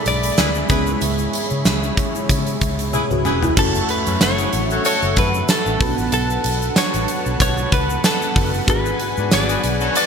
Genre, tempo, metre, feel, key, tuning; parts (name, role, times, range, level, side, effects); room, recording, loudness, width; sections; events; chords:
1980s-style pop; 94 BPM; 4/4; swing 55% on 16ths; F# minor; A4 = 440 Hz
direct-recorded clean electric guitar; melody; 0.0-10.1 s; A4 to D5; -22 LUFS; equal; lush chorus, ping-pong delay
FM electric piano with soft pad layer; accompaniment; 0.0-10.1 s; G#3 to C#5; -25 LUFS; left 1 dB; chorus, phaser
brassy analog pad; sustained chords; 0.0-10.1 s; G#4 to C#6; -26 LUFS; equal; chorus
vintage muted fingered electric bass; bass; 0.1-9.9 s; E1 to C#3; -23 LUFS; equal
huge arena drum kit; drums; 0.1-10.1 s; crash cymbal, hi-hat, kick drum, snare drum, tambourine, toms; -20 LUFS; right 1 dB; gated reverb
egg shaker; percussion; 0.1-10.1 s; -34 LUFS; left 14 dB
warm horn section; stabs; 0.4-5.1, 9.2-10.1 s; A3 to D5; -25 LUFS; left 2 dB; ping-pong delay
moderate plate reverb, RT60 2.5 s; bright 1980s-style digital production; -16 LUFS; side -6 dB against mid
0.0-3.6 A section; 3.6-10.1 B section
drum fill 2.9-3.6
0.0 E7/B; 0.7 C#m7; 3.6 F#m7; 5.8 Bm7; 8.7 G#m7b5